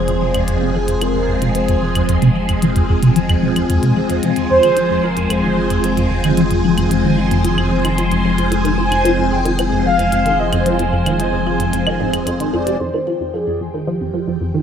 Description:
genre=ambient, sequencer-driven space music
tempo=112 BPM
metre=4/4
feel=straight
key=unclear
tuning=A4 = 440 Hz
part: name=mellow horn-like synth lead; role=melody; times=0.0-14.6 s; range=G4 to Ab5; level=-20 LUFS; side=equal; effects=ensemble chorus, tape echo
part: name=phased string machine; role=sustained chords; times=0.0-14.6 s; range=F3 to G5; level=-19 LUFS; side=left 1 dB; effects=ensemble chorus, phaser
part: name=resonant blip pluck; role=riff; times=0.0-14.6 s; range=F2 to F3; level=-18 LUFS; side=equal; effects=phaser, ensemble chorus, tape echo
part: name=round analog bass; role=bass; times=0.0-14.6 s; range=F1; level=-24 LUFS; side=equal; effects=none
part: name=bubbling stepped-filter texture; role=texture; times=0.0-14.6 s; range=G5 to Ab5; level=-27 LUFS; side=right 2 dB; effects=chorus, built-in reverb
part: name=electronic hi-hat and claves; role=percussion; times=0.1-12.8 s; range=none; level=-26 LUFS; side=left 1 dB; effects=tape echo
room=moderate plate reverb, RT60 2.6 s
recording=none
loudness=-14 LUFS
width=side -8 dB against mid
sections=0.0-12.8 A section; 12.8-14.6 B section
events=fade-in on synth texture 0.0-12.8; filter sweep on synth arpeggio sound 0.0-12.8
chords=0.0 Fm; 12.8 Fmadd9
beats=0.48 1.02 1.55 | 2.09 2.62 3.16 3.70 | 4.23 4.77 5.30 5.84 | 6.38 6.91 7.45 7.98 | 8.52 9.05 9.59 10.12 | 10.66 11.20 11.73 12.27 | 12.80 13.34 13.88 14.41

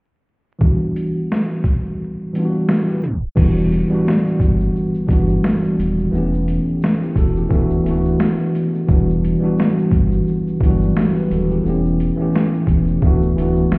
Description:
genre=lo-fi hip hop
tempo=87 BPM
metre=4/4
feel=swing 56% on 16ths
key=E dorian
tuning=A4 = 441 Hz
part: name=tine electric piano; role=accompaniment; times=0.6-13.8 s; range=E3 to B4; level=-17 LUFS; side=equal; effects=slow stereo tremolo, cassette tape, low-pass filter
part: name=boom bap sampler-style drum kit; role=drums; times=0.6-13.8 s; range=crash cymbal, hi-hat, kick drum, shaker, snare drum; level=-17 LUFS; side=equal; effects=overdrive
part: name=sub bass with octave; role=bass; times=3.4-13.8 s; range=D1 to G1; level=-20 LUFS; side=equal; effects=none
room=light reverb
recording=heard muffled through a wall, stone room reverb, vinyl crackle, EQ, tape stop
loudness=-15 LUFS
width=side -29 dB against mid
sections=0.6-3.4 A section; 3.4-13.8 B section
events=filter sweep on tine electric piano 0.6-3.4; kick muted 2.0-3.4; tape stop 3.0-3.4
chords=0.6 Em7; 6.1 A7/E; 7.5 D69; 8.9 Em7; 11.6 A7/E; 13.0 D69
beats=| 0.61 1.30 1.99 2.68 | 3.37 4.06 4.75 5.43 | 6.12 6.81 7.50 8.19 | 8.88 9.57 10.26 10.95 | 11.64 12.33 13.02 13.71

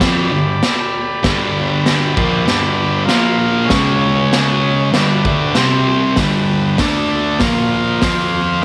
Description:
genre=garage rock duo or trio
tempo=97 BPM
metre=4/4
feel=straight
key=unclear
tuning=A4 = 440 Hz
part: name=combo organ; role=sustained chords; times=0.0-8.6 s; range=C4 to B5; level=-23 LUFS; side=equal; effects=spring reverb
part: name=thick fuzz guitar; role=riff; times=0.0-8.6 s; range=G2 to F4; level=-18 LUFS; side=equal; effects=distortion
part: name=raw garage drum kit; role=drums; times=0.0-8.2 s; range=crash cymbal, hi-hat, kick drum, snare drum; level=-20 LUFS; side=equal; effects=none
room=small room reverb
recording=none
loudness=-15 LUFS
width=mono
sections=0.0-6.2 A section; 6.2-8.6 B section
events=none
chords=0.0 G; 3.1 Bb5; 3.7 C#5; 4.9 G; 5.6 C5; 6.2 G; 6.8 D5; 7.4 Bb5; 8.0 F5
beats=0.00 0.62 | 1.23 1.85 2.47 3.08 | 3.70 4.32 4.94 5.56 | 6.17 6.79 7.41 8.03

